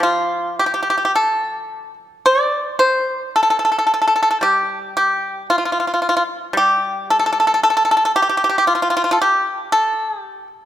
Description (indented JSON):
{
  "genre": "chinese traditional, Chinese solo plucked strings",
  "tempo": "56 BPM",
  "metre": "4/4",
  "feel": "rubato",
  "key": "unclear",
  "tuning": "A4 = 440 Hz",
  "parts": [
    { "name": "pipa", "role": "solo", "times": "0.0-10.5 s", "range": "F3 to D5", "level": "-15 LUFS", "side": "equal", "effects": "none" }
  ],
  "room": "light reverb",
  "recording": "none",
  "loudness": "-15 LUFS",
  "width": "side -12 dB against mid",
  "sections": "0.0-10.7 A section",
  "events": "none",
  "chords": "none"
}